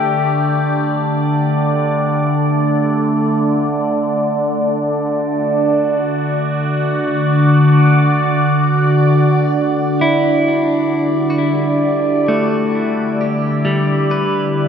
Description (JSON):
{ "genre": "ambient", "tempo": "66 BPM", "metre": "4/4", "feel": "straight", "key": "E minor", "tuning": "A4 = 440 Hz", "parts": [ { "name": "evolving wavetable pad", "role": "sustained chords", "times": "0.0-14.7 s", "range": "D3 to D5", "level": "-14 LUFS", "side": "equal", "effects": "phaser, built-in reverb" }, { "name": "clean electric guitar", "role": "arpeggios", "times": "10.0-14.7 s", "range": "G3 to E4", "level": "-18 LUFS", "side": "left 1 dB", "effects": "ping-pong delay" }, { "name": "pedal steel guitar", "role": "melody", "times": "10.5-14.7 s", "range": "D4 to B4", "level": "-28 LUFS", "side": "right 1 dB", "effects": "ping-pong delay" } ], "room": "wet cathedral reverb, RT60 4.9 s", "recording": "in a vast, echoing space", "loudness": "-13 LUFS", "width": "side -7 dB against mid", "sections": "0.0-9.6 A section; 9.6-14.7 B section", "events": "none", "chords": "0.0 Gsus2; 2.3 D; 9.6 Em7" }